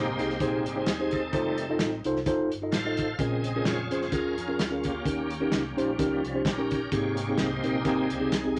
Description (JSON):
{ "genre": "uptempo gospel", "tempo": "129 BPM", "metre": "4/4", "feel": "swing 55% on 8ths", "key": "Ab major", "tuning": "A4 = 443 Hz", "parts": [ { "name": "mellow tine electric piano", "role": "accompaniment", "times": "0.0-8.6 s", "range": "Ab2 to Eb5", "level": "-30 LUFS", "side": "equal", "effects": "none" }, { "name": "bright tonewheel organ", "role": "sustained chords", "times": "0.0-8.6 s", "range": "C3 to F5", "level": "-34 LUFS", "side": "equal", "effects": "fast rotary speaker, overdrive, chorus vibrato" }, { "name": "deep dub fingered electric bass", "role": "bass", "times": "0.0-8.6 s", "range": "F1 to F2", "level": "-42 LUFS", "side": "equal", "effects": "none" }, { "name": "warm soul drum kit", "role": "drums", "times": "0.2-8.6 s", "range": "hi-hat, kick drum, snare drum", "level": "-34 LUFS", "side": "equal", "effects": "none" } ], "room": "wet studio ambience, RT60 0.5 s", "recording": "none", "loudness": "-28 LUFS", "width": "mono", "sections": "0.0-8.6 A section", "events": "tonewheel organ solo 0.0-8.6", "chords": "0.0 Abmaj7; 1.3 F7; 3.2 Bbm7; 5.1 Eb7; 6.9 Abmaj7" }